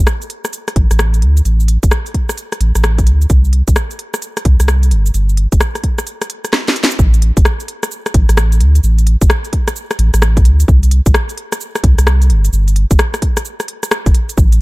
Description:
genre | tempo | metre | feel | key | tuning
UK garage, two-step garage | 130 BPM | 4/4 | swing 64% on 16ths | unclear | A4 = 440 Hz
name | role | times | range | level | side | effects
saturated sub bass | bass | 0.0-14.6 s | F1 to D2 | -10 LUFS | equal | none
house drum kit | drums | 0.1-14.6 s | hi-hat, rim click, shaker, snare drum | -19 LUFS | equal | none
electronic kick drum | drums | 0.8-14.5 s | none | -12 LUFS | equal | none
room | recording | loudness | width
little or no reverb | dark, warm production | -11 LUFS | side -22 dB against mid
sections
0.0-7.0 A section; 7.0-14.6 B section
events
break 6.1-7.0; drum fill 6.5-7.0; drop 7.0-14.6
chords
none

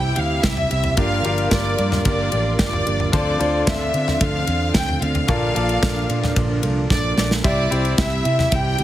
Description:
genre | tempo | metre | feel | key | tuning
piano-driven pop | 111 BPM | 4/4 | straight | G dorian | A4 = 439 Hz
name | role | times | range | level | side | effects
warm studio violin section | melody | 0.0-8.8 s | D5 to G5 | -24 LUFS | equal | none
bright concert grand piano | accompaniment | 0.0-8.8 s | G2 to G5 | -26 LUFS | left 3 dB | none
warm studio string section | sustained chords | 0.0-8.8 s | C3 to Bb4 | -31 LUFS | equal | none
fingerpicked plugged-in steel-string acoustic guitar | riff | 0.0-8.8 s | G2 to A4 | -27 LUFS | right 5 dB | none
vintage muted fingered electric bass | bass | 0.0-8.8 s | G1 to D3 | -23 LUFS | equal | none
modern studio drum kit | drums | 0.2-8.8 s | crash cymbal, kick drum, ride cymbal, snare drum, toms | -22 LUFS | equal | none
room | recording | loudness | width
light reverb | heavily compressed radio sound, multiband compression | -17 LUFS | side -13 dB against mid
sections
0.0-8.8 A section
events
drum fill 6.9-7.4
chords
0.0 C; 1.0 Gm7; 3.1 Dm7; 5.3 Bbmaj7; 7.4 C

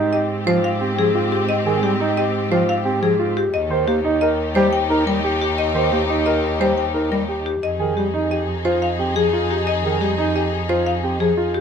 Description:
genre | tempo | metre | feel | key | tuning
classical, minimalist pattern music | 176 BPM | 6/4 | straight | Ab major | A4 = 440 Hz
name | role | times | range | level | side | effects
rich studio string section | sustained chords | 0.0-11.5 s | C4 to Ab4 | -26 LUFS | left 4 dB | none
warm baby grand piano | arpeggios | 0.0-11.6 s | Eb4 to C5 | -22 LUFS | right 4 dB | none
rich cello | bass | 0.0-11.6 s | Eb2 to Ab2 | -25 LUFS | right 3 dB | none
buzzing marimba with hard mallets | melody | 0.1-11.6 s | G4 to G5 | -22 LUFS | left 5 dB | none
mellow bass clarinet | accompaniment | 0.5-11.3 s | Eb3 to Eb4 | -23 LUFS | right 1 dB | none
room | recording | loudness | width
light reverb | minimal, uncompressed stereo recording, faint mains hum | -17 LUFS | side -7 dB against mid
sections
0.0-11.6 A section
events
none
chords
0.0 Abmaj7; 3.5 Eb; 7.6 Fm7

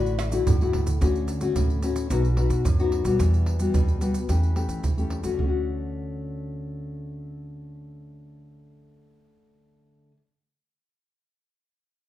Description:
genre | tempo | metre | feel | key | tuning
samba and choro | 110 BPM | 4/4 | straight | D major | A4 = 438 Hz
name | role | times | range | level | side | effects
small celesta | melody | 0.0-0.6 s | D5 | -36 LUFS | left 4 dB | none
nylon-string guitar | accompaniment | 0.0-10.3 s | F#2 to G4 | -27 LUFS | left 4 dB | none
upright bass | bass | 0.0-10.1 s | A1 to E3 | -26 LUFS | equal | none
maracas, pandeiro, tamborim and surdo | percussion | 0.1-5.5 s | none | -26 LUFS | right 2 dB | none
room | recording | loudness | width
wet large studio reverb, RT60 0.8 s | band playing live in one room | -22 LUFS | side -13 dB against mid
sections
0.0-1.0 A section; 1.0-5.4 B section; 5.4-9.8 C section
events
drum fill 0.2-1.0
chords
0.0 Dadd9; 1.0 Dmaj7; 2.1 B; 3.2 Emadd9; 4.3 A7/E; 5.4 Dmaj7

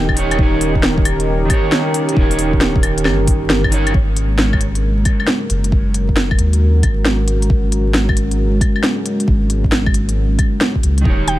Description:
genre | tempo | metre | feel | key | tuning
future garage | 135 BPM | 4/4 | swing 65% on 16ths | unclear | A4 = 440 Hz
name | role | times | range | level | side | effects
mallet-like synth pluck | melody | 0.0-0.5, 11.3-11.4 s | G5 | -27 LUFS | right 2 dB | chorus, digital delay
electric guitar at the edge of break-up | accompaniment | 0.0-3.9, 11.0-11.4 s | D#3 to C#5 | -21 LUFS | right 3 dB | vintage 12-bit sampler grit, sidechain pumping, dub echo
dark analog pad | sustained chords | 0.0-11.4 s | G#3 to A#4 | -21 LUFS | left 1 dB | chorus, sidechain pumping
soft dub sub bass | bass | 0.0-11.4 s | D#1 to D#2 | -17 LUFS | equal | sidechain pumping
electronic kick drum | drums | 0.1-11.2 s | none | -16 LUFS | equal | none
organic electronic drum kit | drums | 0.1-11.4 s | claves, hi-hat, snare drum | -19 LUFS | equal | none
room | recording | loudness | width
digital ambience | vinyl crackle | -13 LUFS | side -15 dB against mid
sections
0.0-3.9 A section; 3.9-11.4 B section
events
none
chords
0.0 D#7; 3.9 G#5

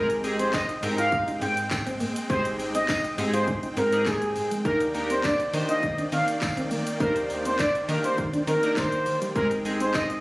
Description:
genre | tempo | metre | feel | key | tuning
dance-pop | 102 BPM | 4/4 | straight | Eb major | A4 = 440 Hz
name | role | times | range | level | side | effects
expressive synth lead | melody | 0.0-10.1 s | Ab4 to G5 | -26 LUFS | equal | chorus, digital delay
chorused retro synth keys | accompaniment | 0.0-9.9 s | Ab3 to C5 | -30 LUFS | equal | sidechain pumping
supersaw chords | sustained chords | 0.0-10.2 s | Eb3 to G5 | -34 LUFS | equal | sidechain pumping
mellow electric guitar | riff | 0.0-10.1 s | G3 to F4 | -32 LUFS | equal | lush chorus
slap-like FM bass | bass | 0.0-9.9 s | Ab1 to Eb3 | -33 LUFS | equal | sidechain pumping
house drum kit | drums | 0.1-10.2 s | handclaps, hi-hat, kick drum, shaker | -32 LUFS | equal | none
tambourine | percussion | 0.5-10.1 s | none | -41 LUFS | left 1 dB | none
room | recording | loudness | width
light reverb | recorded on a phone in the room, studio reverb, compression | -23 LUFS | side -21 dB against mid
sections
0.0-10.2 A section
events
none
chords
0.0 Abmaj7; 4.7 Ebmaj7; 9.4 Abmaj7

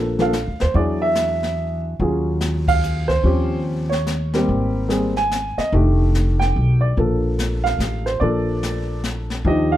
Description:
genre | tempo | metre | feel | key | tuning
jazz piano trio | 145 BPM | 3/4 | swing 64% on 8ths | unclear | A4 = 441 Hz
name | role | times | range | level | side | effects
dark baby grand piano | melody | 0.0-9.8 s | Eb3 to Ab5 | -20 LUFS | equal | none
upright bass | bass | 0.0-9.8 s | F1 to E2 | -21 LUFS | equal | none
jazz brush drum kit | drums | 0.2-9.8 s | brushed snare drum, hi-hat, kick drum, ride cymbal, snare drum | -27 LUFS | left 2 dB | none
room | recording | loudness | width
light reverb | dark, warm production | -17 LUFS | side -13 dB against mid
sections
0.0-9.5 A section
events
band accent 2.6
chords
0.0 Bbmaj7; 0.8 E9; 2.0 Ebm11; 4.5 Abmaj9; 5.7 F13; 7.0 Bbmaj7

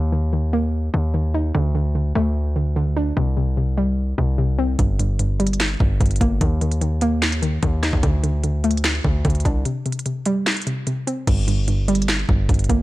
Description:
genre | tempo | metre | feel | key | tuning
hip hop, trap | 148 BPM | 4/4 | half-time | G minor | A4 = 440 Hz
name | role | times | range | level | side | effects
hollow square pluck | accompaniment | 0.0-12.8 s | G2 to Eb4 | -22 LUFS | equal | chorus
distorted 808-style bass | bass | 0.0-12.8 s | G1 to Eb2 | -21 LUFS | equal | distortion
trap drum kit | drums | 4.8-12.8 s | crash cymbal, handclaps, hi-hat, kick drum, rim click, snare drum | -21 LUFS | equal | vintage 12-bit sampler grit
room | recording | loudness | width
digital ambience | none | -18 LUFS | side -17 dB against mid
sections
0.0-11.3 A section; 11.3-12.8 B section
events
break 9.7-11.3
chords
0.0 Eb5; 1.5 D5; 3.2 C5; 4.8 Gm; 6.4 Eb5; 8.0 D5; 9.7 C5; 11.3 Gm

